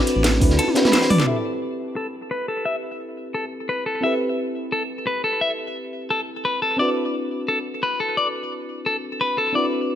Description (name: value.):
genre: liquid drum and bass.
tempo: 174 BPM.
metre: 4/4.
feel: straight.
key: unclear.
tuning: A4 = 440 Hz.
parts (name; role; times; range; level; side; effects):
mellow FM electric piano; accompaniment; 0.0-10.0 s; C4 to B5; -25 LUFS; equal; chorus, dub echo.
crunchy breakbeat drum kit; drums; 0.1-1.2 s; hi-hat, snare drum; -26 LUFS; equal; high-pass filter on hats, studio reverb, high-pass filter on snare, high-pass filter on room.
garage drum kit; drums; 0.1-1.4 s; crash cymbal, hi-hat, ride cymbal, snare drum, toms; -21 LUFS; right 1 dB; low-pass filter on snare, studio reverb, low-pass filter on hats, low-pass filter on cymbals, low-pass filter on toms.
swelling detuned saw bass; bass; 0.2-0.6 s; A1 to D2; -20 LUFS; equal; none.
electronic kick drum; drums; 0.4-0.5 s; none; -20 LUFS; right 1 dB; studio reverb.
clean electric guitar; arpeggios; 0.6-9.7 s; A4 to E5; -24 LUFS; left 2 dB; low-pass filter, tape echo.
room: moderate recital hall reverb, RT60 1.5 s.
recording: none.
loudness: -20 LUFS.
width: side -10 dB against mid.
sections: 0.0-1.3 A section; 1.3-10.0 B section.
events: drop 0.0-1.3; drum fill 0.6-1.3; filter sweep on clean electric guitar 1.3-10.0.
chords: 0.0 D13; 1.3 Am9; 6.8 D13.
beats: 0.24 0.59 0.93 | 1.28 1.62 1.97 2.31 | 2.66 3.00 3.35 3.69 | 4.04 4.38 4.73 5.07 | 5.42 5.76 6.11 6.45 | 6.79 7.14 7.49 7.83 | 8.17 8.52 8.86 9.21 | 9.55 9.90.